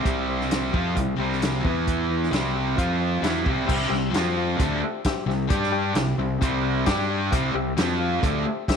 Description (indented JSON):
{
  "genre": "classic rock",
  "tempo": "132 BPM",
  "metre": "4/4",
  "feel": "straight",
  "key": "C major",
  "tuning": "A4 = 441 Hz",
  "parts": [
    { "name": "raw garage guitar", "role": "riff", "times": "0.0-8.5 s", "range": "C3 to G4", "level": "-27 LUFS", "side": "right 10 dB", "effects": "overdrive" },
    { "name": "sludgy distorted guitar", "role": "riff", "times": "0.0-8.4 s", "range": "C3 to G4", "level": "-27 LUFS", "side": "left 10 dB", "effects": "overdrive" },
    { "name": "reed electric piano", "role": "accompaniment", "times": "0.1-8.8 s", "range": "E4 to G5", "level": "-32 LUFS", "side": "left 10 dB", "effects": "fast tremolo" },
    { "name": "fuzz fingered electric bass", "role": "bass", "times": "0.1-8.4 s", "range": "C2 to G2", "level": "-29 LUFS", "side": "equal", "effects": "overdrive" },
    { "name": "vintage drum kit", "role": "drums", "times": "0.1-8.8 s", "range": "crash cymbal, hi-hat, kick drum, snare drum", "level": "-26 LUFS", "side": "equal", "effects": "none" }
  ],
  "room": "moderate echo chamber reverb, RT60 1.7 s, studio ambience",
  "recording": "1960s-style stereo with parts hard left and right",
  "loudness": "-21 LUFS",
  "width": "side -6 dB against mid",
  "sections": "0.0-3.7 A section; 3.7-8.8 B section",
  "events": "none",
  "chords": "0.0 C; 1.6 E5; 2.3 C; 2.8 F5; 3.2 C; 4.1 F5; 4.6 C; 5.5 G5; 6.0 C; 6.9 G5; 7.3 C; 7.8 F5; 8.2 C"
}